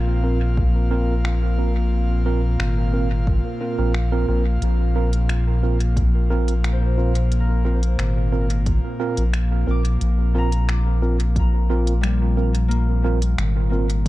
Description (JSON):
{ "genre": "ambient dub", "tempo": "89 BPM", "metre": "4/4", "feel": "straight", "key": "unclear", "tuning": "A4 = 440 Hz", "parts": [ { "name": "airy breathy pad", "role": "sustained chords", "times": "0.0-14.1 s", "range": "Bb2 to F5", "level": "-28 LUFS", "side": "equal", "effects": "chorus" }, { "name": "round analog bass", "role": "bass", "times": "0.0-14.1 s", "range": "Ab1 to Bb1", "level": "-19 LUFS", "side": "equal", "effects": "none" }, { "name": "tine electric piano", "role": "stabs", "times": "0.2-13.9 s", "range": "C4 to Bb4", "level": "-28 LUFS", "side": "right 5 dB", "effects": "medium stereo tremolo, vintage 12-bit sampler grit, low-pass filter, dub echo" }, { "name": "electronic kick drum", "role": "drums", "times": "0.6-14.1 s", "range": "none", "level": "-22 LUFS", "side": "equal", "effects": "none" }, { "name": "organic electronic drum kit", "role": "drums", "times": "1.2-14.1 s", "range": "finger snaps, hi-hat", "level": "-33 LUFS", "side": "left 1 dB", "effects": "dub echo" }, { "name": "Celtic harp", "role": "arpeggios", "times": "6.7-14.1 s", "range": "G3 to D6", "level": "-31 LUFS", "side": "left 6 dB", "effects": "tape echo" } ], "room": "little or no reverb", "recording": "dark, warm production", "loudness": "-18 LUFS", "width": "side -17 dB against mid", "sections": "0.0-14.1 A section", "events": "none", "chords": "0.0 Bbsus2" }